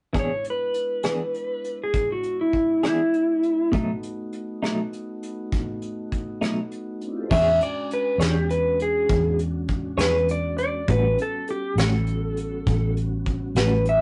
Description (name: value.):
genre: slow blues.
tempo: 67 BPM (dotted quarters).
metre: 12/8.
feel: straight.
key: E mixolydian.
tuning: A4 = 439 Hz.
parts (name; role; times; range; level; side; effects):
clean electric guitar; accompaniment; 0.1-13.8 s; A2 to C#5; -28 LUFS; equal; tremolo.
mellow tonewheel organ; sustained chords; 0.1-14.0 s; G3 to D5; -36 LUFS; equal; slow rotary speaker.
vintage brush drum kit; drums; 0.1-14.0 s; crash cymbal, hi-hat, kick drum, rim click, snare drum; -31 LUFS; equal; none.
clean lap steel guitar; melody; 0.2-14.0 s; E4 to E5; -25 LUFS; equal; none.
vintage muted fingered electric bass; bass; 7.3-14.0 s; A1 to E2; -27 LUFS; equal; none.
room: moderate studio ambience, RT60 0.5 s.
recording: rough rehearsal-room recording, warm saturation, nothing above 10.9 kHz.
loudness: -24 LUFS.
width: mono.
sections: 0.1-7.3 A section; 7.3-14.0 B section.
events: electric slide guitar solo 7.3-14.0.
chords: 0.1 E7; 3.7 B7; 7.3 E13; 10.9 A13.